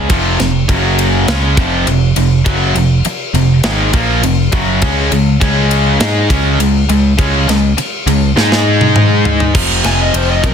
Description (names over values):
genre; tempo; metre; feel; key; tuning
hard rock; 102 BPM; 4/4; straight; F minor; A4 = 439 Hz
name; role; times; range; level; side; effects
biting overdriven guitar; riff; 0.0-10.5 s; F2 to Ab4; -17 LUFS; right 10 dB; none
tight distorted guitar; riff; 0.0-10.5 s; F2 to Ab4; -18 LUFS; left 10 dB; distortion
modern bright picked electric bass; bass; 0.0-10.5 s; F1 to Ab2; -15 LUFS; equal; none
distorted electric guitar; riff; 0.1-9.5 s; F2 to Ab4; -18 LUFS; equal; overdrive
tight metal drum kit; drums; 0.1-10.5 s; crash cymbal, kick drum, ride cymbal, snare drum, toms; -16 LUFS; equal; soft clipping on kick, soft clipping on snare
lead guitar through a small cranked amp; melody; 9.9-10.5 s; Bb4 to Ab5; -16 LUFS; left 5 dB; overdrive, plate reverb
room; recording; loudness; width
light reverb; dense, heavily limited modern master; -10 LUFS; side -7 dB against mid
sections
0.1-9.6 A section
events
drum fill 8.4-9.6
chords
0.1 F5; 0.7 Gb5; 1.3 Fm; 4.8 Db5; 8.4 Ab5; 9.6 F5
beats
| 0.10 0.69 1.28 1.87 | 2.46 3.05 3.64 4.23 | 4.82 5.41 6.00 6.59 | 7.18 7.78 8.37 8.96 | 9.55 10.14